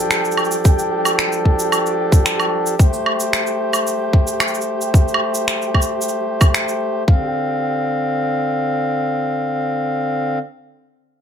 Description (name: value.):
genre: folktronica.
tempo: 112 BPM.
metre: 4/4.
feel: straight.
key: D minor.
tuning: A4 = 441 Hz.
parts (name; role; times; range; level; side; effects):
pedal harmonium; sustained chords; 0.0-10.4 s; D3 to F5; -20 LUFS; equal; plate reverb.
flickering grainy texture; texture; 0.0-7.1 s; G4 to G5; -26 LUFS; equal; built-in reverb, plate reverb.
electronic finger snaps, shaker and woodblock; drums; 0.1-6.8 s; none; -20 LUFS; right 2 dB; none.
electronic kick drum; drums; 0.7-7.2 s; none; -12 LUFS; equal; none.
room: moderate studio ambience, RT60 0.5 s.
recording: none.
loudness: -16 LUFS.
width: side -8 dB against mid.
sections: 0.0-7.1 A section; 7.1-11.2 B section.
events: none.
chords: 0.0 F69; 2.8 Am7; 7.1 Dm7.